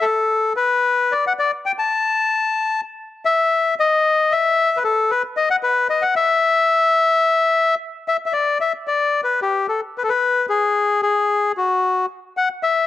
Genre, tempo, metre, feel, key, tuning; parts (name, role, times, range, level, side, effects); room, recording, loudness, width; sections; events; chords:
tango; 112 BPM; 4/4; rubato; A4 = 440 Hz
bandoneon; solo; 0.0-12.9 s; F#4 to A5; -16 LUFS; left 3 dB
moderate spring reverb, RT60 1.4 s, small room reverb; home recording on cassette; -16 LUFS; side -13 dB against mid
0.0-8.3 A section; 8.3-12.9 B section